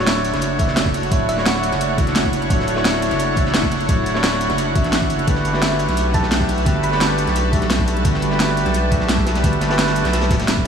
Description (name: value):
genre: liquid drum and bass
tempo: 173 BPM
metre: 4/4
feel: straight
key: D major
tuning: A4 = 439 Hz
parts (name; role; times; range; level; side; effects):
- bright concert grand piano; accompaniment; 0.0-10.7 s; A3 to E5; -22 LUFS; equal; tape echo
- shimmering ambient pad; sustained chords; 0.0-10.7 s; G3 to A5; -24 LUFS; equal; chorus, built-in reverb, sidechain pumping
- saturated sub bass; bass; 0.0-10.7 s; D1 to B1; -22 LUFS; equal; none
- thumb-piano-like synth pluck; melody; 0.1-1.8, 5.6-7.2 s; E5 to B5; -30 LUFS; right 2 dB; chorus, diffuse ambient delay
- crunchy breakbeat drum kit; drums; 0.1-10.6 s; hi-hat, snare drum; -29 LUFS; equal; high-pass filter on hats, high-pass filter on snare, high-pass filter on room
- drum and bass drum kit; drums; 0.1-10.6 s; hi-hat, rim click, snare drum; -23 LUFS; right 1 dB; overdrive
- electronic kick drum; drums; 0.6-10.6 s; none; -20 LUFS; equal; overdrive
room: moderate huge ambient reverb, RT60 7.3 s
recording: dreamy mix soaked in reverb, small room ambience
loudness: -16 LUFS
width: side -7 dB against mid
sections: 0.0-10.7 A section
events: none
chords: 0.0 Dmaj9; 5.3 Gmaj9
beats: 0.07 0.42 0.77 | 1.12 1.46 1.81 2.16 | 2.50 2.85 3.20 3.54 | 3.89 4.24 4.58 4.93 | 5.28 5.62 5.97 6.32 | 6.67 7.01 7.36 7.71 | 8.05 8.40 8.75 9.09 | 9.44 9.79 10.13 10.48